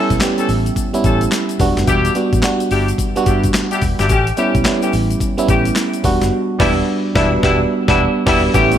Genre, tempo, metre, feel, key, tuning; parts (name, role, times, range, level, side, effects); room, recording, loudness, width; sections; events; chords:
R&B, new jack swing; 108 BPM; 4/4; swing 63% on 16ths; E dorian; A4 = 438 Hz
FM electric piano; accompaniment; 0.0-8.8 s; G3 to G4; -17 LUFS; right 3 dB; chorus
warm horn section; stabs; 0.0-8.7 s; G3 to A4; -20 LUFS; left 3 dB; digital delay
vintage muted fingered electric bass; bass; 0.1-8.7 s; E1 to B1; -19 LUFS; left 1 dB
breakbeat sampler-style drum kit; drums; 0.1-8.8 s; crash cymbal, handclaps, hi-hat, kick drum, snare drum; -20 LUFS; left 1 dB
tube shaker; percussion; 0.1-8.8 s; -33 LUFS; left 14 dB
chorused pulse-width pad; sustained chords; 8.5-8.8 s; G3 to C#4; -22 LUFS; right 3 dB
moderate plate reverb, RT60 1.5 s, digital ambience; bright 1980s-style digital production; -13 LUFS; side -10 dB against mid
0.0-8.5 A section
band accent 6.3-8.5
0.0 A7; 1.6 Em7; 4.1 A7; 6.0 Em7